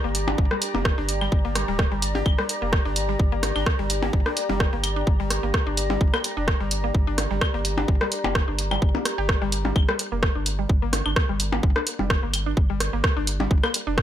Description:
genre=minimal techno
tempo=128 BPM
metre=4/4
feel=swing 54% on 16ths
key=G minor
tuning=A4 = 445 Hz
part: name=mallet-like synth pluck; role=riff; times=0.0-13.9 s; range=G3 to G4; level=-31 LUFS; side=equal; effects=chorus, sidechain pumping, ping-pong delay
part: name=saturated sub bass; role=bass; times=0.0-14.0 s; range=D1 to G1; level=-28 LUFS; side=equal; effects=sidechain pumping
part: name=deep dark ambient pad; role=texture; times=0.0-14.0 s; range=G4 to Bb5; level=-31 LUFS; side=left 1 dB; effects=chorus, built-in reverb, sidechain pumping
part: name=punchy analog drum machine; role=drums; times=0.1-14.0 s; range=hi-hat, rim click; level=-26 LUFS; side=right 1 dB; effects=overdrive
part: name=electronic percussion blips, rim click and claves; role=percussion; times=0.3-13.7 s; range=none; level=-27 LUFS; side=left 3 dB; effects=none
part: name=electronic kick drum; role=drums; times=0.4-14.0 s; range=none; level=-22 LUFS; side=equal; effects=none
room=light reverb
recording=none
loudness=-21 LUFS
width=side -11 dB against mid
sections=0.0-14.0 A section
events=none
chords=0.0 Gm

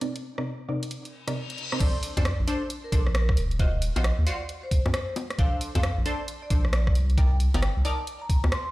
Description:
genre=UK garage, two-step garage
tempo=134 BPM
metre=4/4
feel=swing 64% on 16ths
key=Bb major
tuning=A4 = 440 Hz
part: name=punchy chord stab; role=stabs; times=0.0-7.9 s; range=C3 to D5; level=-33 LUFS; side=equal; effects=chorus, phaser, tape echo
part: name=garage drum kit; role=drums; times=0.0-8.6 s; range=bongos, crash cymbal, hi-hat, rim click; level=-33 LUFS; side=equal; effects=overdrive
part: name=reverse cymbal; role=sound effects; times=1.2-1.8 s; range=none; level=-36 LUFS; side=left 5 dB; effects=none
part: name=vibraphone with medium mallets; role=melody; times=1.8-8.7 s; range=Bb4 to C6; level=-36 LUFS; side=right 1 dB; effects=tape echo
part: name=saturated sub bass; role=bass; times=1.8-8.5 s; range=Eb1 to Gb2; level=-24 LUFS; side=equal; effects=sidechain pumping
part: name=electronic kick drum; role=drums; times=1.8-8.4 s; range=none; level=-23 LUFS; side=equal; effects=none
room=little or no reverb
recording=played on a big sound system in a bare room, stone room reverb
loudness=-23 LUFS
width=side -18 dB against mid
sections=0.0-1.8 A section; 1.8-8.7 B section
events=reverse cymbal 1.2-1.8; drop 1.8-8.7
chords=0.0 Cm7; 1.8 Bbmaj7; 3.4 Ebm6; 5.4 Bbmaj7; 7.2 Cm7

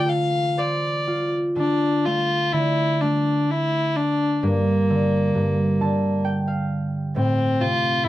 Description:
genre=celtic folk, Celtic slow air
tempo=58-68 BPM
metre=3/4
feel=rubato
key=D minor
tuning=A4 = 439 Hz
part: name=warm fiddle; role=melody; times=0.0-8.1 s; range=Bb3 to F5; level=-22 LUFS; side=left 2 dB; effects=none
part: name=concert harp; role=accompaniment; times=0.0-8.1 s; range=G2 to A5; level=-22 LUFS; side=right 1 dB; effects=none
room=little or no reverb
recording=dry, close 1970s-style studio recording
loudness=-19 LUFS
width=side -14 dB against mid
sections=0.0-1.6 A section; 1.6-8.1 B section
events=harp fill 5.3-7.1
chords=0.0 Dm7; 4.4 Gm; 7.1 Am

